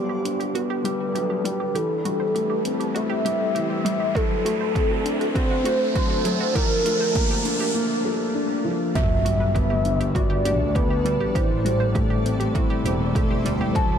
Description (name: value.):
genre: piano and strings electronica.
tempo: 100 BPM.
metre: 4/4.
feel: straight.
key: G major.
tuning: A4 = 435 Hz.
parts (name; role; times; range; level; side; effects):
warm velvety synth lead; melody; 0.0-14.0 s; G4 to A5; -26 LUFS; equal; chorus, cassette tape, ping-pong delay.
granular cloud pad; sustained chords; 0.0-14.0 s; A3 to A5; -32 LUFS; equal; built-in reverb, sidechain pumping.
analog pluck; arpeggios; 0.0-13.9 s; F#3 to C5; -33 LUFS; right 5 dB; chorus, sidechain pumping, ping-pong delay.
felt-muted upright piano; riff; 0.0-14.0 s; E3 to A4; -26 LUFS; left 3 dB; ping-pong delay.
rich studio double bass section; bass; 0.0-14.0 s; E1 to D2; -28 LUFS; equal; sidechain pumping, high-pass filter.
riser, swell and impact; sound effects; 1.4-11.4 s; none; -31 LUFS; right 1 dB; none.
deep house drum kit; drums; 0.3-13.9 s; hi-hat, toms; -36 LUFS; right 2 dB; overdrive.
electronic kick drum; drums; 4.2-13.9 s; none; -24 LUFS; right 1 dB; overdrive.
room: light reverb, digital ambience.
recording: none.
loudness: -20 LUFS.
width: side -8 dB against mid.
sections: 0.0-9.0 A section; 9.0-14.0 B section.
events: build-up 0.0-9.0; riser 1.4-7.8; break 7.8-9.0; swell 7.8-9.0; drop 9.0-14.0; impact 9.0-11.4.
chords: 0.0 Gmaj7; 1.8 Am7; 4.2 D7; 6.6 Bbmaj7; 9.0 Gmaj7; 11.4 Am7.